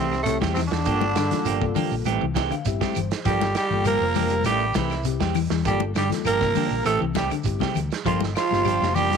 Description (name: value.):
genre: afrobeat.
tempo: 100 BPM.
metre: 4/4.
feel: straight.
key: G dorian.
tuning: A4 = 440 Hz.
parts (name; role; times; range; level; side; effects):
growling tenor saxophone; melody; 0.0-9.2 s; A3 to Bb4; -25 LUFS; right 4 dB; none.
raspy baritone saxophone; second line; 0.0-9.2 s; A2 to Bb3; -31 LUFS; left 12 dB; none.
trombone with bucket mute; second line; 0.0-9.2 s; A2 to Bb3; -31 LUFS; right 12 dB; none.
semi-hollow electric guitar; arpeggios; 0.0-9.2 s; C3 to G3; -30 LUFS; left 13 dB; none.
clean electric guitar; stabs; 0.0-9.1 s; E3 to G4; -30 LUFS; right 12 dB; none.
hollow-body short-scale fingered electric bass; bass; 0.0-9.2 s; F1 to G2; -28 LUFS; equal; none.
crunchy breakbeat drum kit; drums; 0.1-9.2 s; hi-hat, kick drum, snare drum; -30 LUFS; right 6 dB; none.
claves; percussion; 0.1-8.8 s; none; -39 LUFS; left 16 dB; none.
shekere; percussion; 0.1-9.2 s; none; -34 LUFS; right 6 dB; none.
mellow reed electric piano; accompaniment; 0.3-9.2 s; Bb3 to G5; -32 LUFS; left 14 dB; fast tremolo.
congas; percussion; 0.4-9.1 s; none; -30 LUFS; left 15 dB; none.
room: light reverb, small room ambience.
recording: 1960s-style stereo with parts hard left and right.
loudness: -20 LUFS.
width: side -6 dB against mid.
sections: 0.0-9.2 A section.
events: reed electric piano fill 2.1-3.3.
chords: 0.0 Am7; 0.9 Gm7; 2.1 Am7; 3.3 Gm7; 4.5 Am7; 5.7 Gm7; 6.9 Am7; 8.1 Gm7.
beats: 0.26 | 0.86 1.46 2.06 2.66 | 3.26 3.86 4.46 5.06 | 5.66 6.25 6.86 7.45 | 8.05 8.65.